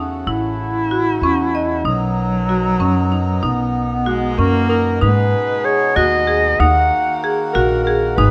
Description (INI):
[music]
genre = contemporary instrumental, chamber music in an uneven meter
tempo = 190 BPM (eighths)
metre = 5/8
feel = straight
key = B major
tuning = A4 = 439 Hz
[part]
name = pedal harmonium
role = sustained chords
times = 0.0-8.3 s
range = B2 to A#4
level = -28 LUFS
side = equal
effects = none
[part]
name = marimba with medium hard mallets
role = arpeggios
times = 0.0-8.3 s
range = C#4 to D#5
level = -23 LUFS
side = equal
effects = none
[part]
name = upright bass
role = bass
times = 0.0-8.3 s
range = G#1 to G#2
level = -22 LUFS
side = equal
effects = none
[part]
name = breathy clarinet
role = melody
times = 0.3-8.3 s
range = F#3 to F#5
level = -21 LUFS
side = equal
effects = none
[part]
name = rich viola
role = second line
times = 4.1-5.0 s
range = G#3 to A#3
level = -25 LUFS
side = equal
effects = none
[sound]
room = light reverb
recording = close, detailed microphones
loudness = -17 LUFS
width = mono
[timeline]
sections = 0.0-5.0 A section; 5.0-8.3 B section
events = none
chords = 0.0 A6; 1.9 Bmaj7; 5.0 G#m; 6.6 D#m